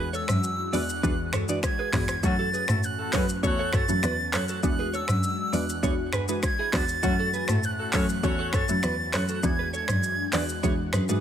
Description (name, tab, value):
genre	afrobeats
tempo	100 BPM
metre	4/4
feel	straight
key	unclear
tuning	A4 = 440 Hz
part	bright reedy silver concert flute	melody	0.0-10.9 s	E6 to A6	-30 LUFS	right 1 dB	ping-pong delay
part	glassy wavetable pluck	accompaniment	0.0-11.2 s	E3 to F#4	-32 LUFS	equal	chorus
part	airy breathy pad	sustained chords	0.0-11.2 s	E3 to F#4	-37 LUFS	left 3 dB	chorus, phaser
part	direct-recorded clean electric guitar	riff	0.0-11.2 s	D4 to D5	-34 LUFS	right 5 dB	lush chorus, ping-pong delay
part	warm cello	bass	0.0-11.2 s	E2 to A2	-29 LUFS	equal	none
part	afro-pop drum kit	drums	0.1-11.2 s	finger snaps, handclaps, hi-hat, kick drum, rim click, shaker, toms	-28 LUFS	equal	none
part	warm horn section	second line	2.2-8.7 s	F#3 to C#5	-33 LUFS	left 4 dB	none
room	digital ambience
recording	none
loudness	-23 LUFS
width	side -9 dB against mid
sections	0.0-11.2 A section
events	none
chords	0.0 E9; 2.2 F#m7; 4.6 E9; 7.0 F#m7; 9.4 E9